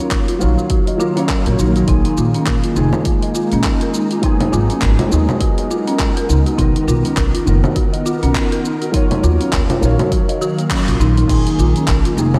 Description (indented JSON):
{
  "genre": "organic downtempo",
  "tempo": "102 BPM",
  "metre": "4/4",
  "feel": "swing 59% on 16ths",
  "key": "Eb minor",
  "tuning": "A4 = 440 Hz",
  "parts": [
    { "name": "felt-muted upright piano", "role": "accompaniment", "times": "0.0-12.4 s", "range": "Eb3 to F5", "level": "-25 LUFS", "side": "equal", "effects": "ensemble chorus, sidechain pumping, low-pass filter, analog delay" },
    { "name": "ethereal airy pad", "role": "sustained chords", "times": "0.0-12.4 s", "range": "Eb3 to F5", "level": "-25 LUFS", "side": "equal", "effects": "ensemble chorus, built-in reverb, sidechain pumping" },
    { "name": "folk marimba with medium mallets", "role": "arpeggios", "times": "0.0-12.4 s", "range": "Bb3 to Eb5", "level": "-23 LUFS", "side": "equal", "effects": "low-pass filter, analog delay" },
    { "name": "deep house drum kit", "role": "drums", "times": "0.0-12.4 s", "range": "congas, crash cymbal, handclaps, hi-hat, shaker", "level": "-26 LUFS", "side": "equal", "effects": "none" },
    { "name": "upright bass", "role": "bass", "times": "0.1-12.3 s", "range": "F1 to Eb2", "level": "-19 LUFS", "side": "equal", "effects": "tube saturation, sidechain pumping" },
    { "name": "electronic kick drum", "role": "drums", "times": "0.1-12.0 s", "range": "none", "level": "-20 LUFS", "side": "equal", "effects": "none" }
  ],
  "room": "moderate lush hall reverb, RT60 1.8 s, digital ambience",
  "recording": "dreamy mix soaked in reverb",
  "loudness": "-16 LUFS",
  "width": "mono",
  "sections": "0.0-11.3 A section; 11.3-12.4 A section",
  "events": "band accent 10.7",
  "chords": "0.0 Ebm9; 1.9 Bb7sus4; 4.2 Abm7; 6.6 Bmaj7; 8.9 Ebm9; 11.3 Bb7sus4"
}